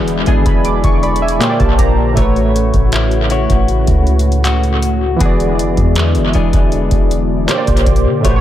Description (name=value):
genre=contemporary R&B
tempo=79 BPM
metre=4/4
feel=straight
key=A major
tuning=A4 = 440 Hz
part: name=warm analog keys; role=accompaniment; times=0.0-8.4 s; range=A2 to D6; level=-17 LUFS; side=right 2 dB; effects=chorus, analog delay
part: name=warm analog pad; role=sustained chords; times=0.0-8.4 s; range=C#3 to G4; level=-21 LUFS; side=left 1 dB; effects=chorus
part: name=direct-recorded clean electric guitar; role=arpeggios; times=0.0-8.4 s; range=E3 to C#5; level=-21 LUFS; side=left 7 dB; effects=analog delay
part: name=clean 808-style bass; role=bass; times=0.0-8.4 s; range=E1 to D3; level=-15 LUFS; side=equal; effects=none
part: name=booming analog drum machine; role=drums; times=0.1-8.4 s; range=handclaps, hi-hat, kick drum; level=-16 LUFS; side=equal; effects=analog delay
room=little or no reverb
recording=echo-heavy mix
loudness=-11 LUFS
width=side -12 dB against mid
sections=0.0-8.4 A section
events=synth keys fill 0.7-2.2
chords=0.0 E7; 1.4 Bb6; 2.2 A6; 5.2 E7; 7.5 Bb6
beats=0.65 1.41 | 2.17 2.93 3.69 4.45 | 5.21 5.97 6.73 7.49 | 8.24